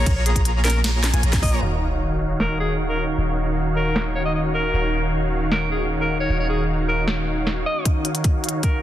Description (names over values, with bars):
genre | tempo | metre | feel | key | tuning
future bass | 154 BPM | 4/4 | half-time | Eb minor | A4 = 440 Hz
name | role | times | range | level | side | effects
breathy alto saxophone | melody | 0.0-8.8 s | Ab4 to Eb5 | -26 LUFS | equal | sidechain pumping, dub echo
airy dreamy lead | arpeggios | 0.0-1.6 s | Ab5 to Bb5 | -31 LUFS | left 1 dB | chorus, sidechain pumping
supersaw chords | riff | 0.0-8.8 s | Eb3 to Bb5 | -25 LUFS | equal | sidechain pumping, low-pass filter
warm 808-style bass | bass | 0.0-7.6 s | Eb1 to Bb1 | -23 LUFS | equal | sidechain pumping
electronic kick drum | drums | 0.1-1.5, 7.9-8.7 s | none | -20 LUFS | equal | none
trap drum kit | drums | 0.1-8.7 s | hi-hat, ride cymbal, snare drum | -26 LUFS | equal | low-pass filter on hats, low-pass filter on snare, low-pass filter on cymbals
ethereal airy pad | sustained chords | 2.9-8.8 s | Eb2 to F5 | -33 LUFS | equal | none
sub drop | sound effects | 1.6-3.2 s | none | -29 LUFS | equal | none
room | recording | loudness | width
light reverb | dense, heavily limited modern master | -19 LUFS | side -12 dB against mid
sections
0.0-1.6 A section; 1.6-7.9 B section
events
drop 0.0-1.6; impact 1.6-3.2; filter sweep on ambient pad 1.6-7.9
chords
0.0 Bbm7; 1.6 Ebm9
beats
| 0.06 0.45 0.84 1.23 | 1.62 2.01 2.40 2.79 | 3.18 3.57 3.96 4.35 | 4.74 5.13 5.52 5.91 | 6.30 6.69 7.08 7.47 | 7.86 8.24 8.63